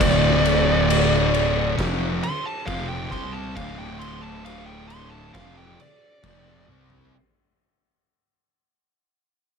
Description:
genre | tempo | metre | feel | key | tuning
stoner and doom metal | 67 BPM | 4/4 | straight | D minor | A4 = 440 Hz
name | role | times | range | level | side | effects
fuzz lead guitar | melody | 0.0-6.7 s | D5 to C6 | -26 LUFS | right 2 dB | distortion, tape echo
thick fuzz guitar | riff | 0.0-7.1 s | D2 to C4 | -24 LUFS | left 1 dB | distortion
fuzz fingered electric bass | bass | 0.0-7.1 s | D1 to C2 | -28 LUFS | equal | overdrive
oversized low-tuned drum kit | drums | 0.0-7.1 s | crash cymbal, kick drum, snare drum, toms | -26 LUFS | left 2 dB | none
room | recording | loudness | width
little or no reverb | none | -19 LUFS | side -6 dB against mid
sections
0.0-7.1 A section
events
fade-out 0.0-7.1; lead electric guitar solo 0.0-7.1; drum fill 6.7-7.1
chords
0.0 Dm

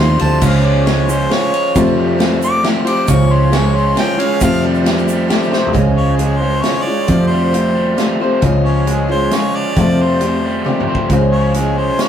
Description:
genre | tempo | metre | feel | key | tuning
folk rock and heartland rock | 135 BPM | 3/4 | straight | unclear | A4 = 441 Hz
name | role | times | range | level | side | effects
clear harmonica | melody | 0.0-12.1 s | Ab4 to D6 | -21 LUFS | left 1 dB | analog delay
picked old ladder-braced acoustic guitar | accompaniment | 0.0-12.1 s | F2 to G4 | -17 LUFS | left 2 dB | none
crunchy overdriven guitar | riff | 0.0-12.1 s | Db3 to Db5 | -19 LUFS | right 2 dB | none
fingered electric bass | bass | 0.0-12.0 s | Db2 to F2 | -16 LUFS | right 1 dB | none
natural country drum kit | drums | 0.2-12.1 s | crash cymbal, hi-hat, kick drum, ride cymbal, snare drum, toms | -20 LUFS | equal | none
egg shaker | percussion | 0.4-5.6 s | none | -31 LUFS | right 8 dB | none
room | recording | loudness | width
moderate studio reverb, RT60 0.7 s | rough rehearsal-room recording | -12 LUFS | side -9 dB against mid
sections
0.0-5.7 A section; 5.7-12.1 B section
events
harmonica solo 0.0-5.7; drum fill 5.5, 10.7-11.1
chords
0.4 Db; 1.8 Fadd9; 3.1 Db; 4.4 Fadd9; 5.7 Db; 7.1 Fadd9; 8.4 Db; 9.8 Fadd9; 11.1 Db

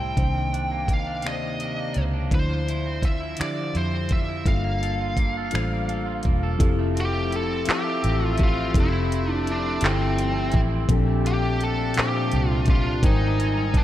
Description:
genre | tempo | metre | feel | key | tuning
slow six-eight R&B | 56 BPM (dotted quarters) | 6/8 | straight | F major | A4 = 440 Hz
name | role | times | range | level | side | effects
bluesy overdriven lead guitar | melody | 0.0-13.8 s | C4 to G5 | -29 LUFS | right 1 dB | distortion, diffuse ambient delay
electric guitar at the edge of break-up | second line | 0.0-13.8 s | Ab2 to A4 | -33 LUFS | right 4 dB | wide subtle chorus, diffuse ambient delay
mellow tine electric piano | accompaniment | 0.0-13.8 s | A2 to G5 | -28 LUFS | left 3 dB | slow stereo tremolo
vintage muted fingered electric bass | bass | 0.0-13.8 s | E1 to F2 | -26 LUFS | equal | none
smooth R&B drum kit | drums | 0.2-13.8 s | finger snaps, handclaps, hi-hat, kick drum | -23 LUFS | equal | none
mellow horn section | stabs | 7.7-13.8 s | C3 to Ab5 | -34 LUFS | left 4 dB | none
room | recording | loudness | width
moderate church reverb, RT60 3.3 s | dreamy mix soaked in reverb | -21 LUFS | side -13 dB against mid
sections
0.0-6.6 A section; 6.6-13.8 B section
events
none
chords
0.2 Cm9; 2.3 Dm9; 4.5 Gm9; 6.6 Fmaj7; 10.9 Bbmaj13; 13.0 Abmaj7

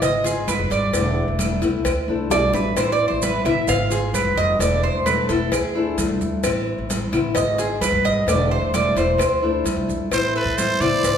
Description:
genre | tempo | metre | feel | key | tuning
latin, Cuban son and guajira | 131 BPM | 4/4 | straight | A harmonic minor | A4 = 441 Hz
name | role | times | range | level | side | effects
nylon-string guitar | accompaniment | 0.0-11.1 s | D3 to E#4 | -24 LUFS | left 4 dB | none
Cuban tres | arpeggios | 0.0-11.2 s | G#4 to E#5 | -21 LUFS | right 2 dB | none
upright bass | bass | 0.0-11.2 s | E1 to D3 | -26 LUFS | right 1 dB | none
congas | percussion | 0.0-11.2 s | none | -29 LUFS | equal | none
cowbell and bongos | percussion | 0.0-11.2 s | none | -27 LUFS | left 3 dB | none
maracas | percussion | 0.0-11.2 s | none | -32 LUFS | right 7 dB | none
claves | percussion | 0.5-11.0 s | none | -36 LUFS | right 7 dB | none
growling trumpet | melody | 10.1-11.2 s | B4 to D5 | -21 LUFS | right 1 dB | none
room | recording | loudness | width
wet recital hall reverb, RT60 1.3 s | recorded in a church or concert hall | -18 LUFS | side -8 dB against mid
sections
0.0-10.1 A section; 10.1-11.2 B section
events
Cuban tres solo 0.0-10.1; drum fill 2.3-2.8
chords
0.0 G#6; 0.9 E7sus4; 1.9 Dmadd9; 2.8 Amadd9; 3.7 G#6; 4.6 E7sus4; 5.5 Dmadd9; 6.4 Amadd9; 7.4 G#6; 8.3 E7sus4; 9.2 Dmadd9; 10.1 Amadd9

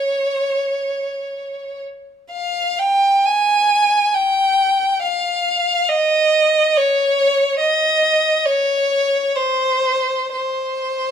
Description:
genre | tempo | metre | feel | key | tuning
classical, free, expressive piece for unaccompanied violin | free time | none | none | unclear | A4 = 440 Hz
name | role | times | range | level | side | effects
rich violin | solo | 0.0-11.1 s | C5 to Ab5 | -15 LUFS | equal | none
room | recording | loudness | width
light reverb | close, detailed microphones | -15 LUFS | side -8 dB against mid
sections
0.0-11.1 A section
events
none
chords
none

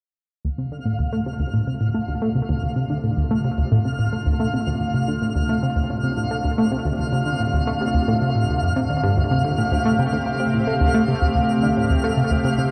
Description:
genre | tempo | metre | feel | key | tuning
ambient, sequencer-driven space music | 110 BPM | 4/4 | straight | D minor | A4 = 445 Hz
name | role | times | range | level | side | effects
evolving wavetable pad | sustained chords | 0.9-12.7 s | C3 to G4 | -29 LUFS | equal | chorus, built-in reverb
tight sequenced synth | riff | 0.4-12.7 s | D2 to A3 | -23 LUFS | equal | chorus, analog delay
twinkling granular texture | texture | 0.7-12.7 s | F5 | -30 LUFS | equal | built-in reverb
room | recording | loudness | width
wet cathedral reverb, RT60 6.3 s | in a vast, echoing space | -21 LUFS | mono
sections
0.4-12.7 A section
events
fade-in on ambient pad 0.4-12.7; filter sweep on synth arpeggio sound 0.4-12.7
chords
0.4 Dm7

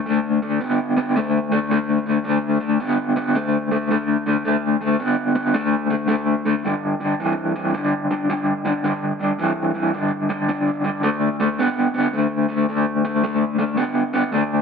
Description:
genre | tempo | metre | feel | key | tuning
blues | 109 BPM | 4/4 | swing 66% on 8ths | unclear | A4 = 440 Hz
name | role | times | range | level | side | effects
electric guitar through a small old amp | solo | 0.0-14.6 s | G2 to B3 | -18 LUFS | left 1 dB | tremolo
room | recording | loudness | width
moderate spring reverb, RT60 1.3 s | none | -18 LUFS | side -6 dB against mid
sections
0.0-14.6 A section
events
none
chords
0.0 D5; 6.6 G5; 11.0 D5

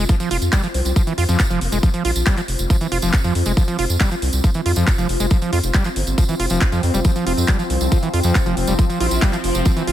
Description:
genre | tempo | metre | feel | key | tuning
psychedelic trance | 138 BPM | 4/4 | straight | unclear | A4 = 439 Hz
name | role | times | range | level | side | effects
overdriven acid bass | riff | 0.0-9.9 s | E3 to F4 | -23 LUFS | equal | distortion, auto-pan, sidechain pumping, ping-pong delay
round analog bass | bass | 0.0-9.9 s | F1 to F2 | -20 LUFS | equal | none
granular cloud pad | texture | 0.0-9.9 s | C4 to C5 | -27 LUFS | left 1 dB | built-in reverb, sidechain pumping
drum and bass drum kit | drums | 0.1-9.9 s | handclaps, hi-hat | -26 LUFS | equal | overdrive
electronic kick drum | drums | 0.1-9.7 s | none | -17 LUFS | equal | none
tambourine | percussion | 0.1-9.9 s | none | -30 LUFS | right 5 dB | none
formant-sweep wobble bass | second line | 0.7-1.8, 6.8-9.6 s | Bb3 to F4 | -34 LUFS | left 2 dB | none
bubbling stepped-filter texture | sustained chords | 6.4-9.9 s | F3 to C4 | -26 LUFS | left 2 dB | chorus, built-in reverb, sidechain pumping
room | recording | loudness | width
little or no reverb | none | -16 LUFS | side -12 dB against mid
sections
0.0-9.9 A section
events
none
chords
0.0 F5

